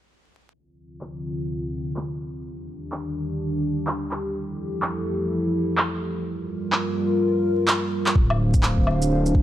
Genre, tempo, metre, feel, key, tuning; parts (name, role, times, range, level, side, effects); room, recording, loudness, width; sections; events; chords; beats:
future garage; 126 BPM; 4/4; swing 62% on 16ths; D minor; A4 = 440 Hz
dark analog pad; sustained chords; 1.0-9.4 s; D3 to F5; -25 LUFS; equal; chorus, sidechain pumping
electronic handclaps, woodblock and shaker; drums; 1.0-9.3 s; -25 LUFS; equal; overdrive
swelling detuned saw bass; bass; 8.2-9.4 s; D1; -21 LUFS; equal
electronic kick drum; drums; 8.2-9.4 s; -19 LUFS; equal; overdrive
moderate lush hall reverb, RT60 1.9 s; vinyl crackle, low-pass filter; -22 LUFS; side -12 dB against mid
0.5-8.2 A section; 8.2-9.4 B section
filter sweep on analog synth pad 0.5-8.2; filter sweep 0.5-8.2; drum fill 7.7-8.2
0.5 Dm7; 2.4 Ebmaj7; 4.3 Fmaj9; 6.3 Gm7; 8.2 Dm7
| 0.54 1.01 1.49 1.97 | 2.44 2.92 3.40 3.87 | 4.35 4.82 5.30 5.78 | 6.25 6.73 7.21 7.68 | 8.16 8.63 9.11